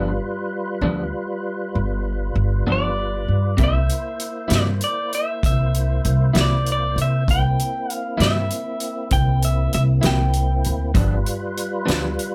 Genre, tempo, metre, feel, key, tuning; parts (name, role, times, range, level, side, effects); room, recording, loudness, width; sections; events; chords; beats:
slow blues; 65 BPM (dotted quarters); 12/8; straight; A4 = 440 Hz
electric guitar through a small old amp; accompaniment; 0.0-12.1 s; G2 to E4; -26 LUFS; equal; tremolo
tonewheel organ; sustained chords; 0.0-12.3 s; G3 to C5; -31 LUFS; equal; overdrive, chorus vibrato, slow rotary speaker
upright bass; bass; 0.0-12.2 s; G1 to C3; -22 LUFS; equal
electric guitar through a small old amp; melody; 2.7-12.3 s; D5 to G5; -28 LUFS; equal
natural country drum kit; drums; 3.6-12.3 s; hi-hat, kick drum, snare drum; -25 LUFS; equal
light reverb; -21 LUFS; mono
0.0-12.3 A section
0.0 G7; 3.6 C7; 11.0 G7
0.82 1.74 2.66 | 3.59 4.51 5.43 6.35 | 7.27 8.19 9.11 10.03 | 10.95 11.87